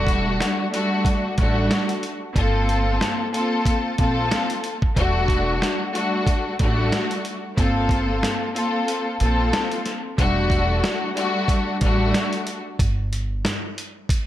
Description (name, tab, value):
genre	hip hop, boom-bap hip-hop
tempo	92 BPM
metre	4/4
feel	swing 56% on 16ths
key	E minor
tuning	A4 = 442 Hz
part	warm studio string section	accompaniment	0.0-12.6 s	G3 to A4	-22 LUFS	left 1 dB	cassette tape, high-pass filter, low-pass filter
part	upright bass	bass	0.0-13.4 s	E1 to Bb1	-24 LUFS	right 1 dB	none
part	dusty soul sampler-style drum kit	drums	0.1-14.3 s	hi-hat, kick drum, snare drum	-23 LUFS	right 1 dB	none
room	small room ambience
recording	none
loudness	-19 LUFS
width	side -13 dB against mid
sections	0.0-10.2 A section; 10.2-14.3 B section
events	kick muted 8.9-10.2; break 12.8-14.3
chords	0.0 Em11; 2.4 Gm11; 5.0 Em11; 7.6 Gm11; 10.2 Em11; 12.8 N.C.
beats	0.40 1.05 1.71 | 2.36 3.01 3.66 4.31 | 4.96 5.62 6.27 6.92 | 7.57 8.23 8.88 9.53 | 10.18 10.84 11.49 12.14 | 12.79 13.44 14.10